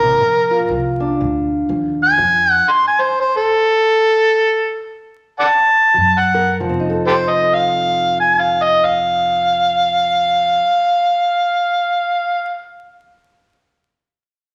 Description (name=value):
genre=acoustic country blues, solo or duo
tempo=91-121 BPM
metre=4/4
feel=swing 60% on 8ths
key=F mixolydian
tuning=A4 = 441 Hz
part: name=overdriven harmonica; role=melody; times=0.0-12.7 s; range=G4 to C6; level=-16 LUFS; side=equal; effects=none
part: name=fingerpicked steel-string acoustic guitar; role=accompaniment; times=0.0-10.9 s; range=Bb2 to Bb4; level=-25 LUFS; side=equal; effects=none
part: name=upright bass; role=bass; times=0.0-2.6, 6.0-10.6 s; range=F1 to Gb2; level=-29 LUFS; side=equal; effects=none
room=moderate large studio reverb, RT60 1.4 s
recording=vinyl crackle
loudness=-15 LUFS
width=mono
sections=0.0-6.6 A section; 6.6-11.9 B section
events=slowing down 2.2-6.6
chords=0.2 Bb; 2.2 F; 6.0 Gb; 6.6 F7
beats=| 0.20 0.69 1.19 1.69 | 2.18 2.68 3.19 3.70 | 4.23 4.79 5.36 5.97 | 6.61 7.27 7.93 8.59 | 9.25 9.91 10.57 11.24